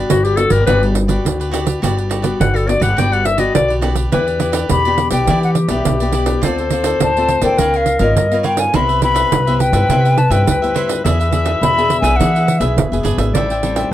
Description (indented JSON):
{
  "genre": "samba and choro",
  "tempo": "104 BPM",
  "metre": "4/4",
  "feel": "straight",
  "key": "G major, E minor from 4.1 s",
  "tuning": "A4 = 441 Hz",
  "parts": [
    { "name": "cavaquinho", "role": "accompaniment", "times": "0.0-13.9 s", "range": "D4 to G5", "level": "-25 LUFS", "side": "right 3 dB", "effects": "none" },
    { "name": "nylon-string guitar", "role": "accompaniment", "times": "0.0-13.9 s", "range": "G2 to A#4", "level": "-22 LUFS", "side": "left 3 dB", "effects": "none" },
    { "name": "upright bass", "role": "bass", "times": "0.0-13.9 s", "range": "D1 to E3", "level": "-18 LUFS", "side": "equal", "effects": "none" },
    { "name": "bright clarinet", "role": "second line", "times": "0.1-13.9 s", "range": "F#4 to G5", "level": "-19 LUFS", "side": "left 4 dB", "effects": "none" },
    { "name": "pandeiro", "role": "percussion", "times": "0.1-13.9 s", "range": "none", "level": "-20 LUFS", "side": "right 6 dB", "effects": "none" },
    { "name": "hollow concert flute", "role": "melody", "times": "4.7-13.0 s", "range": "D#5 to B5", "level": "-17 LUFS", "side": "left 2 dB", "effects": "none" }
  ],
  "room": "light reverb",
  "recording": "none",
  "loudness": "-13 LUFS",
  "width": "side -13 dB against mid",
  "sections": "0.0-4.1 A section; 4.1-13.9 B section",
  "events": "clarinet solo 0.0-4.1",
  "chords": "0.0 Gmaj7; 4.1 Em7; 6.4 Dm7; 7.6 C#6; 8.7 Cmaj7; 11.0 E7; 13.3 Am7"
}